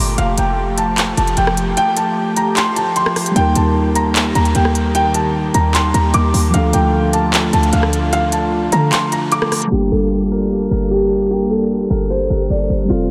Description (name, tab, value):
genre	hip hop, trap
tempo	151 BPM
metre	4/4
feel	half-time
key	G minor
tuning	A4 = 440 Hz
part	felt-muted upright piano	melody	0.0-13.1 s	F4 to D6	-21 LUFS	equal	tape echo
part	warm analog pad	sustained chords	0.0-13.1 s	Bb2 to A5	-25 LUFS	equal	chorus
part	short 808-style bass	bass	0.0-13.1 s	F1 to D3	-21 LUFS	equal	none
part	trap drum kit	drums	0.2-9.7 s	handclaps, hi-hat, rim click	-24 LUFS	equal	none
part	mellow tine electric piano	accompaniment	3.3-13.1 s	F3 to Bb4	-22 LUFS	equal	none
room	wet huge ambient reverb, RT60 8.0 s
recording	dreamy mix soaked in reverb, low-pass filter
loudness	-16 LUFS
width	mono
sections	0.0-9.7 A section; 9.7-13.1 B section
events	kick muted 1.8-3.4, 8.9-9.7; filter sweep 9.7-13.1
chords	0.2 Fadd9; 3.4 Eb; 6.5 Dm; 9.7 Gmadd9